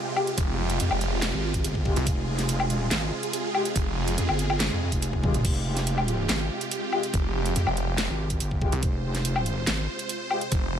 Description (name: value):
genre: heavy wobble dubstep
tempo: 142 BPM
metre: 4/4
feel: half-time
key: F minor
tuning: A4 = 440 Hz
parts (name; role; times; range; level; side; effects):
- supersaw chords; sustained chords; 0.0-10.8 s; C3 to C5; -30 LUFS; right 2 dB; phaser, sidechain pumping
- mellow brass ensemble; stabs; 0.2-10.4 s; Ab3 to G4; -33 LUFS; left 5 dB; digital delay
- dubstep drum kit; drums; 0.2-10.6 s; crash cymbal, handclaps, hi-hat, snare drum, toms, woodblock; -28 LUFS; left 1 dB; none
- snarling distorted saw bass; bass; 0.4-4.2, 7.1-10.8 s; F1 to C2; -27 LUFS; equal; overdrive
- electronic kick drum; drums; 0.4-10.6 s; none; -27 LUFS; equal; none
- wobble bass; bass; 0.8-9.9 s; F1 to F2; -27 LUFS; equal; chorus, overdrive
room: little or no reverb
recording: none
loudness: -24 LUFS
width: side -9 dB against mid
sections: 0.0-10.8 A section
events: drum fill 5.1-5.4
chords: 0.0 Fmadd9